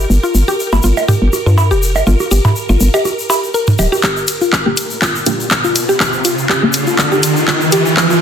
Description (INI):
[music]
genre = minimal techno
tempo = 122 BPM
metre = 4/4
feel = swing 55% on 16ths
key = G minor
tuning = A4 = 439 Hz
[part]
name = hollow knocking FM bass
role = bass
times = 0.0-3.9 s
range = D1 to G2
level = -11 LUFS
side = equal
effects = sidechain pumping
[part]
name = swarming drone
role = texture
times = 0.0-8.2 s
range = F4 to Bb4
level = -25 LUFS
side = right 1 dB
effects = built-in reverb, sidechain pumping
[part]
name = egg shaker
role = percussion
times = 0.1-8.2 s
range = none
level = -23 LUFS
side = left 4 dB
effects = none
[part]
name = mallet-like synth pluck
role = riff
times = 0.2-8.1 s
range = F4 to Bb4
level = -18 LUFS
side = left 2 dB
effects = chorus, sidechain pumping, ping-pong delay
[part]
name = electronic bongos, cowbell and toms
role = percussion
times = 0.5-4.0 s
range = none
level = -16 LUFS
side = right 3 dB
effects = overdrive
[part]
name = filtered dub chord stab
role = stabs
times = 0.7-0.8, 4.7-6.7 s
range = Bb3 to G4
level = -20 LUFS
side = left 1 dB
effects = phaser, analog chorus, dub echo
[part]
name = electronic kick drum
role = drums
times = 4.0-8.1 s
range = none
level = -21 LUFS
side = equal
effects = high-pass filter on kick
[part]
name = house drum kit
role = drums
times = 4.0-8.1 s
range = handclaps, hi-hat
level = -15 LUFS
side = left 1 dB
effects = none
[part]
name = riser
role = sound effects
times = 5.2-8.2 s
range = none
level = -17 LUFS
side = right 2 dB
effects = none
[sound]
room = light reverb, digital ambience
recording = dense, heavily limited modern master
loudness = -11 LUFS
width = side -8 dB against mid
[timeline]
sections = 0.0-4.0 A section; 4.0-8.2 B section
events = build-up 4.0-8.2; drum fill 4.0-8.2; filter sweep on synth arpeggio sound 4.0-8.2; filter sweep on synth stab 4.0-8.2; riser 5.2-8.2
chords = 0.0 Gm7; 4.0 G7(no3)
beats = | 0.10 0.59 1.08 1.58 | 2.07 2.56 3.05 3.54 | 4.04 4.53 5.02 5.51 | 6.00 6.49 6.99 7.48 | 7.97